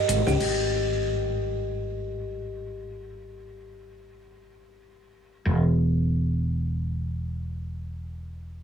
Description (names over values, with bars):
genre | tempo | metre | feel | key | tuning
organic downtempo | free time | none | none | unclear | A4 = 440 Hz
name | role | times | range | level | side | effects
woody fretless electric bass | bass | 0.1-8.6 s | E1 to C#2 | -26 LUFS | equal | lush chorus
deep house drum kit | drums | 0.1-0.6 s | crash cymbal, hi-hat, shaker | -33 LUFS | left 2 dB | overdrive
room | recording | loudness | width
little or no reverb | small room ambience | -24 LUFS | side -8 dB against mid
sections
0.4-8.6 A section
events
none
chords
none